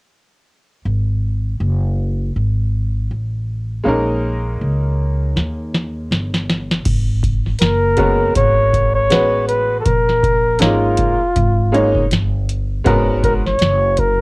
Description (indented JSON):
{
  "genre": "hip hop, jazz-hop",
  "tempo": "80 BPM",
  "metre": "4/4",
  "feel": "swing 58% on 16ths",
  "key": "G# dorian",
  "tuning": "A4 = 440 Hz",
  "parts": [
    { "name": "upright bass", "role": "bass", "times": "0.9-14.2 s", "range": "F#1 to D#2", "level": "-18 LUFS", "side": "equal", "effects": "none" },
    { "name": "bright upright piano", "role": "accompaniment", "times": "3.8-13.4 s", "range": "F#3 to C#5", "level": "-19 LUFS", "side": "equal", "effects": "cassette tape" },
    { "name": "booming analog drum machine", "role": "drums", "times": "5.4-14.2 s", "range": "crash cymbal, hi-hat, kick drum, snare drum", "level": "-19 LUFS", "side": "equal", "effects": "none" },
    { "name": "mellow flugelhorn", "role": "melody", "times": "7.6-14.2 s", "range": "E#4 to C#5", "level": "-16 LUFS", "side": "equal", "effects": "cassette tape" }
  ],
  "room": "little or no reverb",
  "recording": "home recording on cassette",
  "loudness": "-14 LUFS",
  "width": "side -28 dB against mid",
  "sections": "0.9-6.9 A section; 6.9-14.2 B section",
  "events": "drum fill 5.4-6.9",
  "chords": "0.9 F#madd9; 3.9 D#7sus4/A#; 6.9 G#m11; 9.9 D#7sus4; 12.9 G#m11"
}